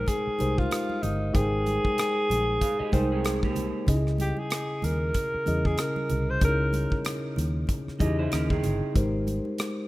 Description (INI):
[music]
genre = lush 1970s-style soul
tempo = 94 BPM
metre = 4/4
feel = swing 58% on 16ths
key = Ab major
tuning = A4 = 440 Hz
[part]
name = breathy alto saxophone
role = melody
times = 0.0-7.0 s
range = Eb4 to C5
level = -29 LUFS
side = equal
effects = none
[part]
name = mellow tine electric piano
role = accompaniment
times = 0.0-9.9 s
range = Db3 to G5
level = -30 LUFS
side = left 1 dB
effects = none
[part]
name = vintage muted fingered electric bass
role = bass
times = 0.0-9.4 s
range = G1 to Fb2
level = -28 LUFS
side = equal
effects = none
[part]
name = modern studio drum kit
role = drums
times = 0.1-9.8 s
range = hi-hat, kick drum, rim click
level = -29 LUFS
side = equal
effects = none
[part]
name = congas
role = percussion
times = 0.1-9.8 s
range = none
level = -40 LUFS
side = right 4 dB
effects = none
[part]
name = electric guitar through a small old amp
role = riff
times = 2.6-3.9, 8.0-8.9 s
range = Bb3 to F5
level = -33 LUFS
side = right 5 dB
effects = none
[sound]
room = light reverb, small room ambience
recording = rough home demo mix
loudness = -24 LUFS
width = side -18 dB against mid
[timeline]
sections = 0.0-9.9 A section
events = none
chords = 0.0 Abmaj9; 3.9 Dbmadd9; 9.0 Abmaj9